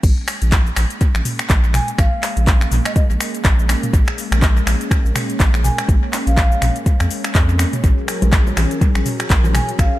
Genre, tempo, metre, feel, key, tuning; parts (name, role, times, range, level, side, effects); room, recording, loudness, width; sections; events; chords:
afro house; 123 BPM; 4/4; swing 57% on 16ths; Bb minor; A4 = 437 Hz
warm analog pad; sustained chords; 0.0-10.0 s; Gb3 to Bb4; -27 LUFS; equal; chorus, sidechain pumping
round analog bass; bass; 0.0-9.9 s; Bb1 to F2; -17 LUFS; equal; tube saturation, sidechain pumping
afro-pop drum kit; drums; 0.0-9.9 s; crash cymbal, finger snaps, handclaps, hi-hat, shaker, toms; -21 LUFS; equal; tape echo
electronic kick drum; drums; 0.0-9.9 s; -15 LUFS; equal
breathy mellow bass bansuri; melody; 1.7-10.0 s; Eb5 to Ab5; -26 LUFS; right 1 dB; analog delay
congas; percussion; 8.2-9.7 s; -23 LUFS; left 2 dB
digital ambience; echo-heavy mix, lossy compression artefacts; -14 LUFS; side -16 dB against mid
0.0-10.0 A section
drop 0.0-10.0
0.0 Bbm7; 7.8 Gb/Bb